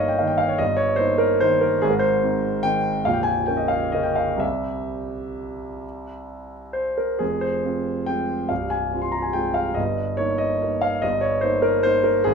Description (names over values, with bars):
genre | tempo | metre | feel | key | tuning
classical, piano waltz | 124-157 BPM | 3/4 | rubato | unclear | A4 = 440 Hz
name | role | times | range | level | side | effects
warm concert grand piano | solo | 0.0-12.3 s | Bb0 to C6 | -20 LUFS | equal | none
room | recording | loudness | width
light reverb | minimal, uncompressed stereo recording | -20 LUFS | side -6 dB against mid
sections
0.0-12.3 A section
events
none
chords
0.0 Eb/G; 1.8 Ab; 3.1 Bbm; 4.4 C; 7.2 Fm; 9.8 Eb/G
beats
0.20 | 0.59 0.99 1.41 | 1.82 2.23 2.65 | 3.06 3.49 3.95 | 4.42 4.89 5.36 | 5.83 6.29 6.76 | 7.21 7.65 8.08 | 8.51 8.93 9.36 | 9.77 10.19 10.62 | 11.03 11.43 11.85 | 12.26